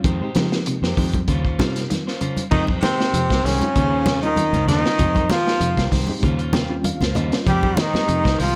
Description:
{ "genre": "afrobeat", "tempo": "97 BPM", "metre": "4/4", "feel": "straight", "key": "F minor", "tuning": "A4 = 441 Hz", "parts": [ { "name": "mellow reed electric piano", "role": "accompaniment", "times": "0.0-8.3 s", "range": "G3 to G5", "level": "-31 LUFS", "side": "equal", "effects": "fast tremolo" }, { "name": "semi-hollow electric guitar", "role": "arpeggios", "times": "0.0-8.6 s", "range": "C3 to F3", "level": "-31 LUFS", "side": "equal", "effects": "none" }, { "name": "electric guitar at the edge of break-up", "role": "stabs", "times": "0.0-8.6 s", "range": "G3 to C5", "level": "-33 LUFS", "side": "equal", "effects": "none" }, { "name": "fingered electric bass", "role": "bass", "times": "0.0-8.5 s", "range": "C2 to F3", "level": "-26 LUFS", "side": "equal", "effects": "none" }, { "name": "crunchy breakbeat drum kit", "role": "drums", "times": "0.0-8.5 s", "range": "crash cymbal, hi-hat, kick drum, snare drum", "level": "-26 LUFS", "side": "equal", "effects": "none" }, { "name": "congas", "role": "percussion", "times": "0.4-8.3 s", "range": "none", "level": "-27 LUFS", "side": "equal", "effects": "none" }, { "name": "brilliant trombone", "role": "melody", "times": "2.5-8.6 s", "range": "C4 to G4", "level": "-23 LUFS", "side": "equal", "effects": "slapback echo" }, { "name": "breathy tenor saxophone", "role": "second line", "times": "2.5-8.6 s", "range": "C3 to G3", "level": "-34 LUFS", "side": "equal", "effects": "none" }, { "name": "raspy baritone saxophone", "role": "second line", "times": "2.5-8.6 s", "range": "C3 to G3", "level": "-34 LUFS", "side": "equal", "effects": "none" } ], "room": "small room ambience", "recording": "none", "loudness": "-20 LUFS", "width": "mono", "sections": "0.0-2.5 A section; 2.5-8.6 B section", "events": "reed electric piano fill 6.2-7.5", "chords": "0.1 Fm9; 1.3 Eb13; 2.5 Fm9; 3.8 Eb13; 5.0 Fm9; 6.2 Eb13; 7.5 Fm9" }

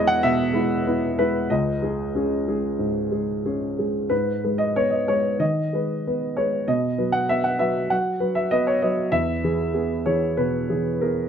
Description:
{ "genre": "neoclassical minimalist piano", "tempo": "89-100 BPM", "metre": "4/4", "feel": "rubato", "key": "unclear", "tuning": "A4 = 441 Hz", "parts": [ { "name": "dark grand piano", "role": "solo", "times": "0.0-11.3 s", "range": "C#2 to F#5", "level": "-20 LUFS", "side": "equal", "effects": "none" } ], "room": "light reverb", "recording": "none", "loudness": "-20 LUFS", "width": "side -8 dB against mid", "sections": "0.0-11.3 A section", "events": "none", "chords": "0.0 E; 1.5 C#sus2; 4.1 G#m; 6.7 B5; 9.1 E" }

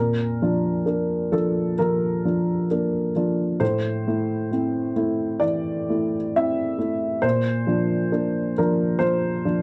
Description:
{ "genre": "neoclassical minimalist piano", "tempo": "66 BPM", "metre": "4/4", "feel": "rubato", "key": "unclear", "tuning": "A4 = 440 Hz", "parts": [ { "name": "dark upright piano", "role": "solo", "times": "0.0-9.6 s", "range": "A2 to E5", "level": "-23 LUFS", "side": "equal", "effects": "none" } ], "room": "light reverb", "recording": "cassette tape", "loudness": "-23 LUFS", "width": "mono", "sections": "0.0-9.6 A section", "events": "none", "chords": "0.0 Bb; 3.6 Am; 7.2 Bb" }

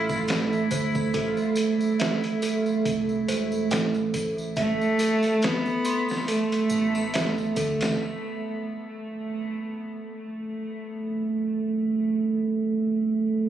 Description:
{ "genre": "trip hop", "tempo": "70 BPM", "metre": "4/4", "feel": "swing 56% on 16ths", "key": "unclear", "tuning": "A4 = 439 Hz", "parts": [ { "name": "rich cello", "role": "melody", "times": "0.0-7.5 s", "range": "A3 to E4", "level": "-29 LUFS", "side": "equal", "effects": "tape echo" }, { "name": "warbly tape-like pad", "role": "sustained chords", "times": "0.0-13.5 s", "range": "A3 to A4", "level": "-27 LUFS", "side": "right 4 dB", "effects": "chorus, built-in reverb" }, { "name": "celesta", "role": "arpeggios", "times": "0.0-8.0 s", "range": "A4 to C6", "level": "-31 LUFS", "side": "right 2 dB", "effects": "digital delay" }, { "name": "deep dub fingered electric bass", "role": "bass", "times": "0.0-8.0 s", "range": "E1 to D2", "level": "-34 LUFS", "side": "left 1 dB", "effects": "none" }, { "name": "trip hop sampler-style drum kit", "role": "drums", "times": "0.1-8.0 s", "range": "hi-hat, kick drum, snare drum", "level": "-30 LUFS", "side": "equal", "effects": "overdrive" }, { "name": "triangle and tambourine", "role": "percussion", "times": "0.1-8.0 s", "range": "none", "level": "-40 LUFS", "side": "equal", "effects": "none" } ], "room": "light reverb, studio reverb", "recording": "recorded on a phone in the room", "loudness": "-23 LUFS", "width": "side -10 dB against mid", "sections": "0.0-8.0 A section; 8.0-13.5 B section", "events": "filter sweep on ambient pad 8.0-13.5", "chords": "0.0 C6; 8.0 N.C." }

